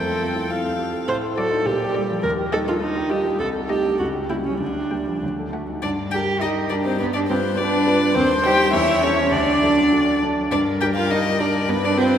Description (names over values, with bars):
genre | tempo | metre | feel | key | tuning
quick classical-period movement for piano quartet | 103 BPM | 2/4 | straight | G minor | A4 = 440 Hz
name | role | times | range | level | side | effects
rich violin | melody | 0.0-12.2 s | B4 to G5 | -25 LUFS | left 4 dB | none
warm cello | second line | 0.0-12.2 s | F#3 to G4 | -23 LUFS | right 2 dB | none
warm grand piano | accompaniment | 0.0-12.2 s | C2 to C5 | -25 LUFS | left 1 dB | none
warm viola | accompaniment | 0.0-12.2 s | C#4 to D5 | -24 LUFS | right 2 dB | none
room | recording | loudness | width
wet church reverb, RT60 3.6 s | none | -18 LUFS | side -9 dB against mid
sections
0.0-5.8 A section; 5.8-12.2 B section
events
none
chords
0.0 F; 1.1 D/A; 1.7 Gm/Bb; 2.2 Eb; 3.4 Adim/C; 4.0 F#(b9)/C#; 4.6 Gm/D; 5.2 D; 5.8 Gm; 7.0 G7; 8.2 Cm/Eb; 8.7 A7/E; 9.3 D; 10.5 Gm